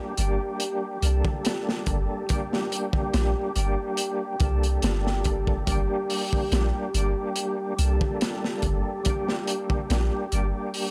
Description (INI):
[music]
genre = trip hop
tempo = 71 BPM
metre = 4/4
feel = swing 53% on 16ths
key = G minor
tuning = A4 = 438 Hz
[part]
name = overdriven tonewheel organ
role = accompaniment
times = 0.0-10.9 s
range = G3 to A4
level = -33 LUFS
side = equal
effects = chorus vibrato, stopped rotary speaker, tremolo, tape echo
[part]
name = dark analog pad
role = sustained chords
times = 0.0-10.9 s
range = G4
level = -35 LUFS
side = equal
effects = chorus
[part]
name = soft 808-style bass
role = bass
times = 0.2-10.5 s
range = G1 to C2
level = -27 LUFS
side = equal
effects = none
[part]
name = crunchy breakbeat drum kit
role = drums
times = 0.2-10.9 s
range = hi-hat, kick drum, snare drum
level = -30 LUFS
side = equal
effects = none
[sound]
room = small room reverb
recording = none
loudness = -26 LUFS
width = mono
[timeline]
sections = 0.0-10.9 A section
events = none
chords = 0.0 Gm